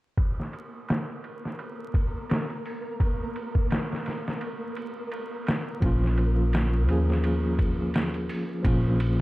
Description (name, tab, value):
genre	trip hop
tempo	85 BPM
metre	4/4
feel	swing 56% on 16ths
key	unclear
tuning	A4 = 440 Hz
part	trip hop sampler-style drum kit	drums	0.2-9.2 s	hi-hat, kick drum, ride cymbal, snare drum	-28 LUFS	equal	overdrive, low-pass filter on cymbals, low-pass filter on kick, low-pass filter on snare, low-pass filter on hats
part	flickering grainy texture	texture	0.6-9.2 s	Bb3 to Bb4	-37 LUFS	right 1 dB	built-in reverb
part	tine electric piano	accompaniment	5.8-9.2 s	F3 to Ab4	-27 LUFS	equal	medium tremolo, vintage 12-bit sampler grit, tape echo
part	upright bass	bass	5.8-9.2 s	Bb1 to Eb2	-25 LUFS	equal	none
room	digital ambience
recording	dark, warm production, vinyl crackle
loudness	-24 LUFS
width	side -19 dB against mid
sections	0.2-9.2 A section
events	none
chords	0.2 N.C.; 5.8 Bbm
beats	| 0.18 0.88 1.59 2.29 | 3.00 3.71 4.41 5.12 | 5.82 6.53 7.24 7.94 | 8.65